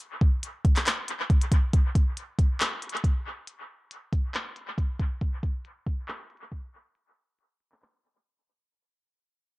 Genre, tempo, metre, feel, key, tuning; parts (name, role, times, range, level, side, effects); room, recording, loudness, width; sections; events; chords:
hip hop; 138 BPM; 4/4; half-time
glitchy drum kit; drums; 0.2-8.6 s; handclaps, hi-hat, kick drum; -24 LUFS; equal; dub echo
little or no reverb; echo-heavy mix, low-pass filter; -24 LUFS; side -21 dB against mid
0.0-1.7 A section; 1.7-8.7 B section
fade-out 1.7-8.7